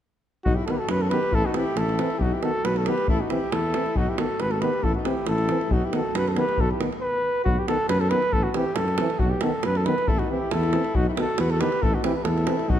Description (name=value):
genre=balkan folk, Balkan brass band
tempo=137 BPM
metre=2/4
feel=straight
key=B phrygian dominant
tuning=A4 = 440 Hz
part: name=mellow flugelhorn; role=melody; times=0.4-12.8 s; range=F#4 to B4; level=-26 LUFS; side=equal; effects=none
part: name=warm alto saxophone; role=second line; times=0.5-6.8, 10.1-12.8 s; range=D#4 to G4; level=-30 LUFS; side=left 4 dB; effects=none
part: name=mellow tuba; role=bass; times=0.5-12.8 s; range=G#1 to F#2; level=-28 LUFS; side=equal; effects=none
part: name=davul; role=percussion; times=0.5-12.8 s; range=none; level=-27 LUFS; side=equal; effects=none
part: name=mellow euphonium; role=accompaniment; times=0.7-12.6 s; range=B3 to C4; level=-32 LUFS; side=left 5 dB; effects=none
part: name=warm euphonium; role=accompaniment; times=0.7-12.6 s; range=D#3 to E3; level=-32 LUFS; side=right 6 dB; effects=none
room=moderate concert hall reverb, RT60 1.9 s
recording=none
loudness=-21 LUFS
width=side -10 dB against mid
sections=0.5-7.5 A section; 7.5-12.8 A section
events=none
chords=0.5 B; 1.3 Am; 2.2 B; 3.1 Am; 4.0 B; 4.8 Am; 5.7 B; 8.3 Am; 9.2 B; 10.1 Am; 10.9 B; 11.8 Am